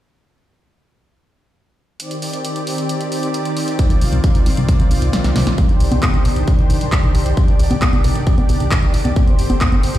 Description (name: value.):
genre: uplifting trance.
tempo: 134 BPM.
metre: 4/4.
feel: straight.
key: C minor.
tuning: A4 = 440 Hz.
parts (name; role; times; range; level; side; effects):
lush unison pad; sustained chords; 2.0-10.0 s; D3 to D5; -22 LUFS; equal; chorus, sidechain pumping.
punchy analog drum machine; drums; 2.0-10.0 s; congas, handclaps, hi-hat, snare drum; -23 LUFS; left 1 dB; overdrive.
electronic kick drum; drums; 3.8-9.7 s; none; -15 LUFS; equal; none.
plucky analog bass; bass; 3.9-10.0 s; G1 to C2; -18 LUFS; equal; sidechain pumping.
room: light reverb.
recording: played on a big sound system in a bare room, large studio reverb.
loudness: -14 LUFS.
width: side -14 dB against mid.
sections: 2.0-5.6 A section; 5.6-10.0 B section.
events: kick drops out 5.1-5.6; drum fill 5.1-5.6.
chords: 2.0 Cmadd9; 9.2 Gsus4.